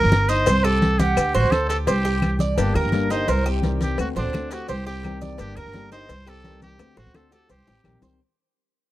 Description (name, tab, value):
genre	latin, Cuban son and guajira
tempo	171 BPM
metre	4/4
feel	straight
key	unclear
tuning	A4 = 441 Hz
part	bright trumpet	melody	0.0-8.0 s	D4 to C5	-25 LUFS	equal	none
part	Cuban tres	arpeggios	0.0-8.2 s	D4 to F#5	-26 LUFS	right 4 dB	none
part	upright bass	bass	0.0-8.2 s	G1 to D2	-23 LUFS	equal	none
part	congas	percussion	0.1-8.2 s	none	-25 LUFS	left 1 dB	none
part	cowbell and bongos	percussion	0.1-8.1 s	none	-29 LUFS	left 5 dB	none
part	guiro	percussion	0.1-8.2 s	none	-43 LUFS	right 8 dB	none
part	maracas	percussion	0.1-8.2 s	none	-40 LUFS	left 8 dB	none
part	claves	percussion	0.6-8.0 s	none	-37 LUFS	left 8 dB	none
part	fingerpicked old ladder-braced acoustic guitar	accompaniment	2.6-8.2 s	C3 to G4	-29 LUFS	left 4 dB	none
room	little or no reverb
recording	dry, close 1970s-style studio recording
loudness	-19 LUFS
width	side -15 dB against mid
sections	0.0-8.2 A section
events	fade-out 0.0-8.2; drum fill 6.8-8.2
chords	0.5 C5; 1.2 D7; 1.9 C5; 2.6 Gm; 3.3 Cm; 4.0 D7; 4.7 Cm; 5.4 Gm; 6.1 Cm; 6.8 D7; 7.5 Cm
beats	0.12 0.47 0.82 | 1.17 1.52 1.88 2.23 | 2.58 2.93 3.28 3.63 | 3.99 4.34 4.69 5.04 | 5.39 5.74 6.09 6.44 | 6.79 7.15 7.50 7.85